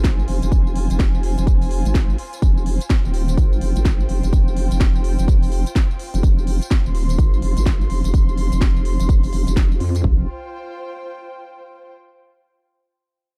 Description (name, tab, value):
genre	bass house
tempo	126 BPM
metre	4/4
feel	swing 61% on 16ths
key	F minor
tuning	A4 = 439 Hz
part	vowel-sweep wobble bass	bass	0.0-10.3 s	Eb1 to F2	-22 LUFS	equal	chorus, overdrive, sidechain pumping
part	house drum kit	drums	0.0-10.2 s	kick drum, toms	-19 LUFS	equal	studio reverb
part	house drum kit	drums	0.0-10.0 s	hi-hat, snare drum, tambourine	-32 LUFS	equal	studio reverb
part	dark chamber string section	texture	0.0-11.9 s	F4 to C6	-36 LUFS	equal	sidechain pumping
room	little or no reverb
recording	dark, warm production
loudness	-18 LUFS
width	mono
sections	0.0-10.0 A section; 10.0-11.9 B section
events	drop 0.0-10.0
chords	0.0 Fm; 10.0 F5